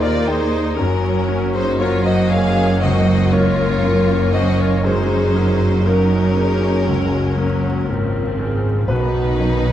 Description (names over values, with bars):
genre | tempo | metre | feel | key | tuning
cinematic | 59 BPM | 4/4 | rubato | unclear | A4 = 440 Hz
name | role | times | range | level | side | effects
rich studio violin section | melody | 0.0-9.7 s | Bb4 to F5 | -27 LUFS | left 3 dB | none
rich studio violin section | second line | 0.0-9.7 s | Db4 to Ab4 | -27 LUFS | left 2 dB | none
warm clarinet | second line | 0.0-9.7 s | F#4 to Db5 | -26 LUFS | equal | none
bright concert grand piano | accompaniment | 0.0-9.7 s | B1 to G5 | -23 LUFS | left 1 dB | none
rich studio viola section | accompaniment | 0.0-9.7 s | D#3 to Eb4 | -26 LUFS | right 2 dB | none
mellow French horn section | sustained chords | 0.0-9.7 s | Gb3 to Bb4 | -25 LUFS | left 1 dB | none
concert harp | arpeggios | 0.0-9.7 s | Gb2 to Bb4 | -24 LUFS | left 4 dB | none
rich studio cello section | bass | 0.0-9.7 s | Eb2 to B2 | -21 LUFS | right 2 dB | none
rich studio double bass section | bass | 0.0-9.7 s | Gb1 to Eb2 | -22 LUFS | right 2 dB | none
room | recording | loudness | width
moderate scoring stage reverb, RT60 1.9 s | dark, warm production, vinyl crackle | -15 LUFS | side -11 dB against mid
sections
0.0-9.7 A section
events
none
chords
0.0 Eb; 0.8 Gb; 8.9 B